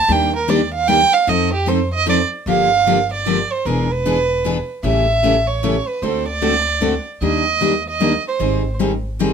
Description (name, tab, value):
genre	acoustic string swing (jazz manouche)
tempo	152 BPM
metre	3/4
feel	swing 63% on 8ths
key	unclear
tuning	A4 = 444 Hz
part	dark violin	melody	0.0-8.8 s	G4 to A5	-18 LUFS	right 4 dB	none
part	upright bass	bass	0.0-9.3 s	E1 to F2	-24 LUFS	equal	none
part	picked steel-string acoustic guitar	accompaniment	0.1-9.3 s	C#3 to A4	-20 LUFS	left 7 dB	none
part	picked steel-string acoustic guitar	accompaniment	0.1-9.3 s	D3 to B4	-24 LUFS	right 8 dB	none
room	light reverb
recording	minimal, uncompressed stereo recording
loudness	-15 LUFS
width	side -7 dB against mid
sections	0.0-2.5 A section; 2.5-9.3 B section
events	violin solo 0.0-2.5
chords	0.1 Ebmaj7; 1.3 F7; 2.5 Gm7; 3.7 E7; 4.8 A7; 6.0 D7; 7.2 Ebmaj7; 8.4 Abmaj7